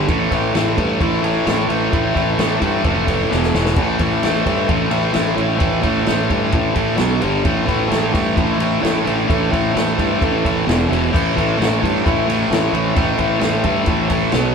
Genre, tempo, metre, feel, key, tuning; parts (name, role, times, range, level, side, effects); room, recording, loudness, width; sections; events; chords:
garage rock duo or trio; 130 BPM; 4/4; straight; A4 = 443 Hz
thick fuzz guitar; riff; 0.0-14.5 s; E2 to B3; -17 LUFS; equal; distortion
growling fingered electric bass; bass; 0.0-14.5 s; E1 to G2; -23 LUFS; equal; overdrive
vintage drum kit; drums; 0.1-14.4 s; crash cymbal, kick drum, ride cymbal, snare drum; -22 LUFS; equal
moderate studio reverb, RT60 0.5 s; band playing live in one room; -15 LUFS; side -6 dB against mid
0.0-14.5 A section
drum fill 3.3-3.8
0.1 A5; 3.3 E5; 3.8 A5; 7.0 B5; 7.2 G5; 7.5 A5; 10.7 E5; 11.1 A5; 14.3 B5